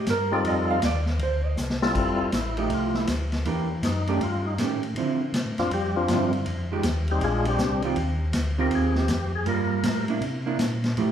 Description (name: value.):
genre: soul jazz organ trio.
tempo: 160 BPM.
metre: 4/4.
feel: swing 64% on 8ths.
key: F major.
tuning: A4 = 440 Hz.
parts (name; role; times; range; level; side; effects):
vintage hollow-body jazz guitar; accompaniment; 0.0-11.1 s; D3 to F5; -28 LUFS; right 4 dB; none.
mellow tonewheel organ; bass; 0.0-11.1 s; F1 to D3; -28 LUFS; left 1 dB; chorus vibrato, slow rotary speaker.
vintage drum kit; drums; 0.1-11.1 s; crash cymbal, hi-hat, kick drum, ride cymbal, snare drum; -30 LUFS; left 1 dB; none.
percussive tonewheel organ; melody; 0.3-10.1 s; F3 to Bb4; -27 LUFS; left 2 dB; slow rotary speaker.
room: wet recital hall reverb, RT60 1.4 s.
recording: recorded in a church or concert hall.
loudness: -22 LUFS.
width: side -9 dB against mid.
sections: 0.0-2.0 A section; 2.0-11.1 A section.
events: hollow-body jazz guitar solo 0.0-2.0; drum fill 1.6-2.0; tonewheel organ solo 2.0-11.1.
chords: 0.5 F7; 2.0 Fmaj9; 3.5 Em7b5; 4.2 Eb7#11; 5.0 Dm9; 6.5 Fm9; 7.2 Bb13; 8.0 Eb69; 9.5 Gm9; 10.2 C9.